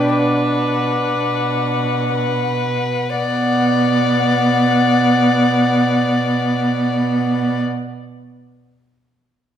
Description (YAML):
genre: classical, slow romantic movement for string quartet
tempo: 31 BPM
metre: 4/4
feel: rubato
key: B minor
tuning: A4 = 440 Hz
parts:
  - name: muted violin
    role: melody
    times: 0.0-7.6 s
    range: F#5 to G5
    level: -23 LUFS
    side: left 7 dB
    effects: none
  - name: muted violin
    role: second line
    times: 0.0-7.6 s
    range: B4 to D5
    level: -21 LUFS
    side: left 4 dB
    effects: none
  - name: muted viola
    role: accompaniment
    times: 0.0-7.6 s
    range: B3 to D4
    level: -18 LUFS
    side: right 2 dB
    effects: none
  - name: muted cello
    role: bass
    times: 0.0-7.6 s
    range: B2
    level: -22 LUFS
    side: right 4 dB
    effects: none
room: wet recital hall reverb, RT60 1.5 s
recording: none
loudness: -15 LUFS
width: side -9 dB against mid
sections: 0.0-3.2 A section; 3.2-9.6 B section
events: slowing down 0.0-3.2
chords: 0.0 Bm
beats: 1.14 | 3.16 5.11 7.04